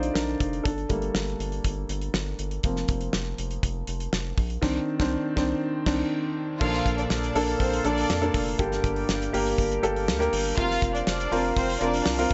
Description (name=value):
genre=piano-driven pop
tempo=121 BPM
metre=4/4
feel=straight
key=Bb major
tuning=A4 = 440 Hz
part: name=warm grand piano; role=accompaniment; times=0.0-12.3 s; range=G2 to F5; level=-29 LUFS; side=equal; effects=none
part: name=round analog bass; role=bass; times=0.0-12.3 s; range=F1 to F2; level=-34 LUFS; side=equal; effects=none
part: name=damped 70s drum kit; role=drums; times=0.0-12.3 s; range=crash cymbal, hi-hat, kick drum, snare drum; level=-31 LUFS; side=equal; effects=none
part: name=warm studio violin section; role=second line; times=6.6-12.3 s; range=C4 to F5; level=-32 LUFS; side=equal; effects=none
part: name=tonewheel organ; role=sustained chords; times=6.6-12.3 s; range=C3 to A4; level=-37 LUFS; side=equal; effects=overdrive, slow rotary speaker
room=light reverb, small room ambience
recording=nothing above 7.9 kHz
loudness=-26 LUFS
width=mono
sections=0.0-6.6 A section; 6.6-12.3 B section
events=grand piano solo 0.0-6.6; band accent 4.6-6.6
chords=0.0 Bbmaj7; 0.7 Gmadd9; 2.6 Fsus4; 4.6 Cmadd9; 6.6 Bbmaj7; 8.6 Gmadd9; 10.6 Fsus4